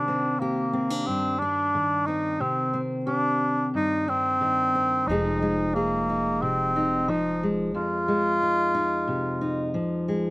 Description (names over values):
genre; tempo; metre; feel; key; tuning
folk; 90 BPM; 4/4; straight; C minor; A4 = 435 Hz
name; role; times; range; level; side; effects
clear bass clarinet; melody; 0.0-9.7 s; Bb3 to F4; -24 LUFS; equal; none
fingerpicked steel-string acoustic guitar; accompaniment; 0.0-10.3 s; F2 to Ab4; -27 LUFS; left 1 dB; none
upright bass; bass; 5.1-7.7 s; F1; -34 LUFS; equal; none
room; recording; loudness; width
little or no reverb; recorded outdoors, with no room sound; -22 LUFS; side -24 dB against mid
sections
0.0-10.3 A section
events
none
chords
0.0 Cmadd9; 5.1 Fm7